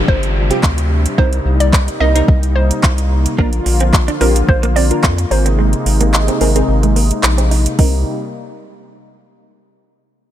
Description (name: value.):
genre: dance-pop.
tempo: 109 BPM.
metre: 4/4.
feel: straight.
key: C minor.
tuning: A4 = 443 Hz.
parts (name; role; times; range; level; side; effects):
hollow square pluck; melody; 0.0-7.2 s; Bb4 to Eb5; -21 LUFS; right 1 dB; chorus, low-pass filter, digital delay.
wavetable chord stab; accompaniment; 0.0-8.0 s; C4 to Bb4; -22 LUFS; equal; sidechain pumping, low-pass filter.
warm analog pad; sustained chords; 0.0-8.0 s; C3 to F4; -21 LUFS; left 1 dB; wide subtle chorus, sidechain pumping, low-pass filter.
round analog bass; bass; 0.0-8.0 s; G1 to F2; -15 LUFS; equal; sidechain pumping.
downlifter; sound effects; 0.0-3.4 s; none; -27 LUFS; equal; none.
smooth R&B drum kit; drums; 0.1-7.9 s; handclaps, hi-hat, kick drum; -16 LUFS; equal; overdrive.
direct-recorded clean electric guitar; riff; 3.4-8.0 s; Ab3 to Eb4; -23 LUFS; right 5 dB; lush chorus, low-pass filter.
room: digital ambience.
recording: none.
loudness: -12 LUFS.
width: side -12 dB against mid.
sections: 0.0-7.8 A section; 7.8-10.0 B section.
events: filter sweep 0.0-7.8; kick muted 5.6-7.8.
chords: 0.0 G7sus4; 1.2 Cm7; 3.4 Bb; 5.3 Abadd9; 7.8 Cm7.